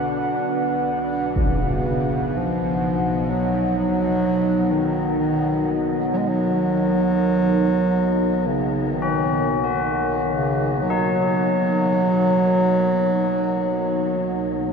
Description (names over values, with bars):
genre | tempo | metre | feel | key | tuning
dark ambient drone | free time | none | none | unclear | A4 = 437 Hz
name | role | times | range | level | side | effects
mellow bass clarinet | melody | 0.0-14.7 s | C#3 to G#3 | -21 LUFS | equal | ping-pong delay
deep dark ambient pad | sustained chords | 0.0-14.7 s | D4 to F#5 | -24 LUFS | right 1 dB | chorus, built-in reverb
bowed-like drone | drone | 0.0-14.7 s | B1 to B2 | -28 LUFS | equal | built-in reverb
wind-like tuned noise texture | texture | 0.0-14.7 s | D4 to D#5 | -36 LUFS | left 1 dB | built-in reverb
impact | percussion | 1.4-1.6 s | none | -28 LUFS | equal | low-pass filter on sfx
tubular bells | arpeggios | 9.0-14.7 s | C#4 to F#4 | -25 LUFS | left 4 dB | ping-pong delay
room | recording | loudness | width
wet cathedral reverb, RT60 6.3 s | in a vast, echoing space | -18 LUFS | side -6 dB against mid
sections
0.0-14.7 A section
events
fade-in on synth drone 0.0-14.7; fade-out on synth texture 0.0-14.7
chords
0.0 Bm; 1.4 D#m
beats
free time